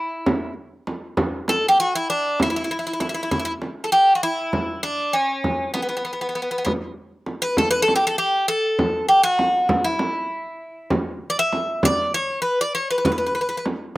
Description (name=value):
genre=Turkish makam ensemble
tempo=197 BPM (eighths)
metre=7/8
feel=straight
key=E makam huseyni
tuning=A4 = 439 Hz
part: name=Greek bouzouki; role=melody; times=0.0-13.6 s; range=B3 to E5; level=-19 LUFS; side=equal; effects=slapback echo
part: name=frame drum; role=percussion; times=0.3-13.8 s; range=none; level=-24 LUFS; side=right 1 dB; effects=none
room=little or no reverb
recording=recorded outdoors, with no room sound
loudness=-19 LUFS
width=side -19 dB against mid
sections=0.0-1.2 A section; 1.2-14.0 B section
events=none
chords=none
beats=0.27 0.57 0.87 | 1.18 1.48 1.78 2.09 2.39 2.70 3.00 | 3.31 3.61 3.91 4.22 4.52 4.83 5.13 | 5.43 5.74 6.04 6.35 6.65 6.96 7.26 | 7.56 7.87 8.17 8.48 8.78 9.09 9.39 | 9.69 10.00 10.30 10.61 10.91 11.21 11.52 | 11.82 12.13 12.43 12.74 13.04 13.34 13.65